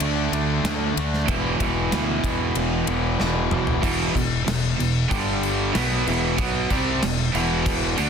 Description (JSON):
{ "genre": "hard rock", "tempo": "94 BPM", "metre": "4/4", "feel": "straight", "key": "E minor", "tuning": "A4 = 440 Hz", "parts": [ { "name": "cranked stack guitar", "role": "riff", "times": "0.0-8.1 s", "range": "E2 to D4", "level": "-26 LUFS", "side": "right 10 dB", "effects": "overdrive" }, { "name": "cranked stack guitar", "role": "riff", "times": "0.0-8.1 s", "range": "E2 to D4", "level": "-27 LUFS", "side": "equal", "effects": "overdrive" }, { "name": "distorted electric guitar", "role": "riff", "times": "0.0-8.1 s", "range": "E2 to D4", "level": "-28 LUFS", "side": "left 8 dB", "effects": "overdrive" }, { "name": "fuzz fingered electric bass", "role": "bass", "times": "0.0-8.1 s", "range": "E1 to E2", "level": "-27 LUFS", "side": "equal", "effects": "overdrive" }, { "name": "gated 80s drum kit", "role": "drums", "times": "0.0-8.1 s", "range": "crash cymbal, kick drum, ride cymbal, snare drum, toms", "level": "-26 LUFS", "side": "left 1 dB", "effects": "none" } ], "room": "light reverb, small room ambience", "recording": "dense, heavily limited modern master", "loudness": "-20 LUFS", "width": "side -7 dB against mid", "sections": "0.0-3.8 A section; 3.8-8.1 B section", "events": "drum fill 3.2-3.8", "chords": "0.0 D5; 1.3 E5; 5.1 G5; 5.7 Em" }